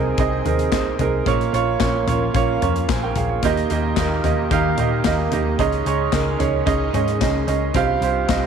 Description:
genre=piano-driven pop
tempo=111 BPM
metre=4/4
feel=straight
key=unclear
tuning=A4 = 439 Hz
part: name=clear upright piano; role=accompaniment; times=0.0-8.5 s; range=G2 to Ab5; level=-20 LUFS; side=right 8 dB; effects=none
part: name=lush unison pad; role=sustained chords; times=0.0-8.5 s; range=C3 to Bb4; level=-29 LUFS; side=left 2 dB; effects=chorus, phaser
part: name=vintage muted picked electric bass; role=bass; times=0.0-8.5 s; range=Bb1 to Bb2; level=-24 LUFS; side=left 2 dB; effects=none
part: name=modern studio drum kit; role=drums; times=0.2-8.4 s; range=handclaps, hi-hat, kick drum, snare drum, toms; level=-24 LUFS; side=left 5 dB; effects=none
room=moderate plate reverb, RT60 2.0 s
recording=1960s-style stereo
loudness=-17 LUFS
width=side -7 dB against mid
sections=0.0-8.5 A section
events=none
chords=0.0 Ab/C; 1.3 Bbm; 3.4 Eb; 5.6 Dbsus2; 7.8 Csus4

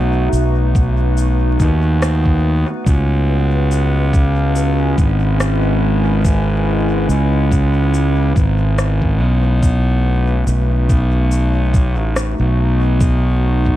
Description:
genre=ambient dub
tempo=71 BPM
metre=4/4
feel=swing 56% on 16ths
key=C# minor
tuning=A4 = 440 Hz
part: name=warbly tape-like pad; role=sustained chords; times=0.0-13.8 s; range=G#3 to B4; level=-22 LUFS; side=equal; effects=chorus, built-in reverb
part: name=fuzz fingered electric bass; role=bass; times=0.0-13.8 s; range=G#1 to D#2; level=-14 LUFS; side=equal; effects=overdrive
part: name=electronic cabasa and rim click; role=drums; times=0.3-13.2 s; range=none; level=-26 LUFS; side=left 1 dB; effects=small room ambience, dub echo
part: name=electronic kick drum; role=drums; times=0.8-13.8 s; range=none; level=-15 LUFS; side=equal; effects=small room ambience
room=digital ambience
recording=dark, warm production, vinyl crackle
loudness=-13 LUFS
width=side -14 dB against mid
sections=0.0-13.8 A section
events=none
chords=0.0 B7; 2.9 C#m7; 9.6 B7

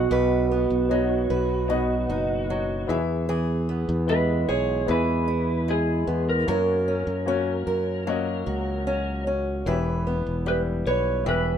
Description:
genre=pop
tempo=75 BPM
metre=4/4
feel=straight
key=unclear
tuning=A4 = 440 Hz
part: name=electric slide guitar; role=melody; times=0.0-11.6 s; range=F#4 to C#5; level=-27 LUFS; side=right 5 dB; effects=none
part: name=fingerpicked acoustic archtop guitar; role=accompaniment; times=0.0-11.6 s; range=B2 to B4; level=-27 LUFS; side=equal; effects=none
part: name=warm upright piano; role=accompaniment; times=0.0-11.6 s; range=A#3 to G5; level=-32 LUFS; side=left 8 dB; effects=none
part: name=modern bright fingered electric bass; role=bass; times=0.0-11.6 s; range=E1 to F#2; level=-26 LUFS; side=equal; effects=none
room=little or no reverb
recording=minimal, uncompressed stereo recording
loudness=-22 LUFS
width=side -8 dB against mid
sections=0.0-11.6 A section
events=none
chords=0.0 B; 2.9 E; 6.5 F#; 9.7 Em

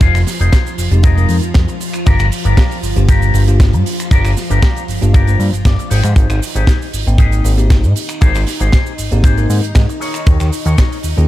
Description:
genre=nu-disco, nu disco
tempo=117 BPM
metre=4/4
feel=straight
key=unclear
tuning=A4 = 440 Hz
part: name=string machine, full ensemble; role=sustained chords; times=0.0-11.3 s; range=F3 to F4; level=-24 LUFS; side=left 1 dB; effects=ensemble chorus, sidechain pumping
part: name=electric guitar with an envelope filter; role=riff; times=0.0-11.0 s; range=D4 to G5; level=-23 LUFS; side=left 6 dB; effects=wide subtle chorus, analog delay
part: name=fat analog bass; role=bass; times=0.0-11.3 s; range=F1 to Ab2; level=-13 LUFS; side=equal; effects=sidechain pumping
part: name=kick drum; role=drums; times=0.0-10.9 s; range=none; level=-11 LUFS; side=equal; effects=none
part: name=tight funk drum kit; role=drums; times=0.0-11.3 s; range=cabasa, finger snaps, hi-hat, snare drum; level=-24 LUFS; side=right 2 dB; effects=none
part: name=bell-like tine electric piano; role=accompaniment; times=0.9-11.3 s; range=Ab3 to G5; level=-24 LUFS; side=left 1 dB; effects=sidechain pumping, analog delay
room=little or no reverb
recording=echo-heavy mix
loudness=-11 LUFS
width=side -15 dB against mid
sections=0.0-11.3 A section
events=clean electric guitar fill 5.4-6.2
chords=0.0 Fm7; 2.1 Gm7; 5.9 Abmaj7; 10.0 Eb7sus4

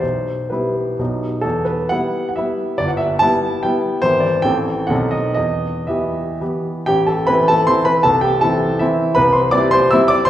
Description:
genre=classical, romantic triple-time dance for piano with dotted rhythms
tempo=111-172 BPM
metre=3/4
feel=rubato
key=E minor, A minor from 6.9 s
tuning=A4 = 437 Hz
part: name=warm baby grand piano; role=solo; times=0.0-10.3 s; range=G1 to E6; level=-15 LUFS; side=equal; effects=none
room=wet recital hall reverb, RT60 1.6 s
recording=heard from further back in the room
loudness=-15 LUFS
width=side -12 dB against mid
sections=0.0-6.9 A section; 6.9-10.3 B section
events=none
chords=0.0 Em/B; 1.0 B; 1.4 Em; 2.8 Em/G; 4.0 E7/G#; 4.5 Am; 4.9 B7b9; 5.4 Em; 6.9 Am; 8.0 Am/C; 9.2 C

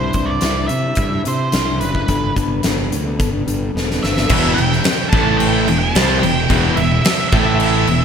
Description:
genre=quiet-loud alternative rock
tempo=109 BPM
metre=4/4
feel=straight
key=E minor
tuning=A4 = 439 Hz
part: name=octave-fuzz lead guitar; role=melody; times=0.0-8.0 s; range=B4 to A5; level=-22 LUFS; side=right 3 dB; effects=distortion, slapback echo
part: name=fingerpicked plugged-in steel-string acoustic guitar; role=arpeggios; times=0.0-4.3 s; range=C3 to A4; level=-23 LUFS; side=left 4 dB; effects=slapback echo
part: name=fuzz fingered electric bass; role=bass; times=0.0-8.0 s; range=E1 to C3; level=-21 LUFS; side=equal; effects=overdrive
part: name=huge arena drum kit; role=drums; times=0.1-8.0 s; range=crash cymbal, hi-hat, kick drum, snare drum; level=-19 LUFS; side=equal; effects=none
part: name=crunchy overdriven guitar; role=riff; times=4.3-8.0 s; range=E2 to C4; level=-21 LUFS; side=equal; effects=none
part: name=distorted electric guitar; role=riff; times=4.3-8.0 s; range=E2 to C4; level=-21 LUFS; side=right 11 dB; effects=distortion
part: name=thick fuzz guitar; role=riff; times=4.3-8.0 s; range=E2 to C4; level=-21 LUFS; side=left 10 dB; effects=distortion
room=moderate lush hall reverb, RT60 1.8 s, small room ambience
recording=big arena sound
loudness=-14 LUFS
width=side -7 dB against mid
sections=0.0-4.3 A section; 4.3-8.0 B section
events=drum fill 3.8-4.3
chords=0.0 Cadd9; 2.1 Gadd9; 4.3 Em; 5.1 A5; 5.7 Em; 7.3 A5

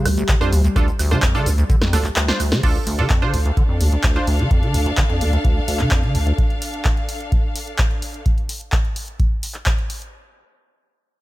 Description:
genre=acid house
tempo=128 BPM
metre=4/4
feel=straight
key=D minor pentatonic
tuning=A4 = 440 Hz
part: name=dark analog pad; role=sustained chords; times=0.0-2.6 s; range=G3 to G4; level=-28 LUFS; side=left 1 dB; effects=chorus, sidechain pumping
part: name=acid bass, square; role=riff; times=0.0-6.3 s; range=C2 to D3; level=-22 LUFS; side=equal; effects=sidechain pumping
part: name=round analog bass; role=bass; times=0.1-6.3 s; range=D2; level=-19 LUFS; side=equal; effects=tube saturation, sidechain pumping
part: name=punchy analog drum machine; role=drums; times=0.1-10.1 s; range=cabasa, crash cymbal, handclaps, hi-hat, rim click, snare drum, woodblock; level=-25 LUFS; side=equal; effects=small room reverb
part: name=electronic kick drum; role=drums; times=0.3-9.8 s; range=none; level=-19 LUFS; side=equal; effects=small room reverb
part: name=band-passed chord stab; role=stabs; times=0.4-4.3 s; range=D4 to C5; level=-26 LUFS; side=right 4 dB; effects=chorus, cassette tape, dub echo
part: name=clear symphonic string section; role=texture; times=2.6-8.3 s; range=D4 to F5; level=-27 LUFS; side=left 1 dB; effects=sidechain pumping
room=little or no reverb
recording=none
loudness=-16 LUFS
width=side -17 dB against mid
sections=0.0-2.6 A section; 2.6-10.1 B section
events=drop 0.0-2.6; filter sweep on acid bass 2.6-6.4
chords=0.0 Dm

